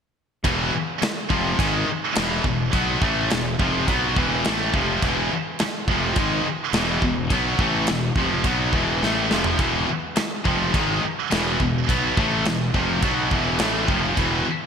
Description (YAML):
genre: heavy metal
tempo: 105 BPM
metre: 4/4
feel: straight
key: unclear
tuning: A4 = 440 Hz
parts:
  - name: distorted electric guitar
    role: riff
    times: 0.4-14.5 s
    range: E2 to B3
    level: -28 LUFS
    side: equal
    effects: overdrive
  - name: heavy high-gain guitar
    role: riff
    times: 0.4-14.5 s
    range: E2 to B3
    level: -26 LUFS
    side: right 10 dB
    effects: distortion
  - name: high-gain distorted guitar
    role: riff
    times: 0.4-14.5 s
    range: E2 to B3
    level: -25 LUFS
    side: left 8 dB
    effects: distortion
  - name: fuzz fingered electric bass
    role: bass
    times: 0.4-14.5 s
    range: E1 to B1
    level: -28 LUFS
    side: equal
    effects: overdrive
  - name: big rock drum kit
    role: drums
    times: 0.4-14.3 s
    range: crash cymbal, kick drum, snare drum, toms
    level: -25 LUFS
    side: equal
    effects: gated reverb
room: moderate lush hall reverb, RT60 2.6 s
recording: bright 1980s-style digital production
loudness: -19 LUFS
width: side -7 dB against mid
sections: 0.5-14.7 A section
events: drum fill 9.0-9.6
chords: 0.5 E